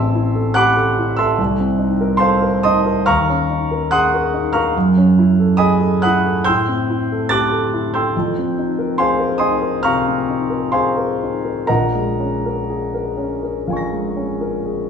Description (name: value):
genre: classical, impressionist solo piano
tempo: 70 BPM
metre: 4/4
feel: uneven beats, rubato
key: Bb minor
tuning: A4 = 440 Hz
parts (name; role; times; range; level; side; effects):
- warm concert grand piano; solo; 0.0-14.9 s; A1 to Bb6; -15 LUFS; equal; none
room: moderate recital hall reverb, RT60 1.4 s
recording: studio reverb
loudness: -15 LUFS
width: side -6 dB against mid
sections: 0.0-14.9 A section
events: none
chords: 0.0 Am6; 1.4 Cm7; 3.1 Ebm7; 4.8 Gbm7; 6.5 Am7; 8.1 F7sus4; 11.7 Bbm7